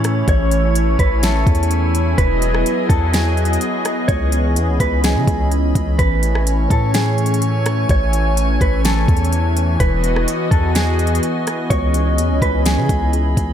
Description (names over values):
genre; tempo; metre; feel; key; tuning
hip hop, atmospheric cloud-rap; 126 BPM; 4/4; half-time; unclear; A4 = 441 Hz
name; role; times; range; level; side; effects
warm analog pad; sustained chords; 0.0-13.5 s; E3 to G#5; -20 LUFS; left 1 dB; wide subtle chorus, sidechain pumping
long sustained 808-style bass; bass; 0.0-13.5 s; E1 to C#3; -18 LUFS; equal; none
smooth R&B drum kit; drums; 0.0-13.5 s; hi-hat, kick drum, rim click, snare drum; -19 LUFS; equal; none
drifting glass-harmonics texture; texture; 0.0-13.5 s; E4 to A6; -30 LUFS; right 2 dB; chorus, built-in reverb
mellow electric guitar; melody; 0.3-13.1 s; G#4 to C#5; -23 LUFS; equal; digital delay
room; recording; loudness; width
light reverb; none; -14 LUFS; side -9 dB against mid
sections
0.0-13.5 A section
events
none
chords
0.0 Amaj7; 2.2 Emaj9; 4.1 C#m9; 6.0 Amaj7; 9.8 Emaj9; 11.7 C#m9